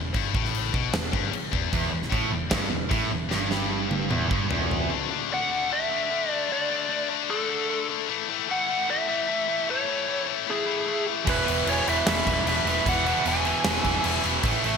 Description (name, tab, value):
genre	hard rock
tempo	151 BPM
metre	4/4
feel	straight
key	unclear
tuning	A4 = 440 Hz
part	heavy high-gain guitar	riff	0.0-14.8 s	E2 to D4	-27 LUFS	left 13 dB	distortion
part	hollow-body short-scale picked electric bass	bass	0.0-4.9, 11.3-14.8 s	E1 to B1	-32 LUFS	equal	none
part	huge arena drum kit	drums	0.1-4.8, 11.3-14.7 s	crash cymbal, kick drum, snare drum, toms	-28 LUFS	equal	gated reverb
part	distorted electric guitar	riff	1.7-4.9, 11.2-14.8 s	E2 to A3	-28 LUFS	right 11 dB	distortion
part	biting lead guitar	melody	5.3-14.2 s	G#4 to G#5	-27 LUFS	equal	overdrive, digital delay
part	octave-fuzz lead guitar	second line	10.5-14.2 s	E4 to E5	-33 LUFS	right 4 dB	distortion
room	moderate lush hall reverb, RT60 1.9 s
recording	bright 1980s-style digital production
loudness	-23 LUFS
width	side -6 dB against mid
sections	0.0-4.9 A section; 4.9-14.8 B section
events	drum fill 3.3-4.9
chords	0.0 E5; 4.9 D5; 8.1 A5; 11.3 E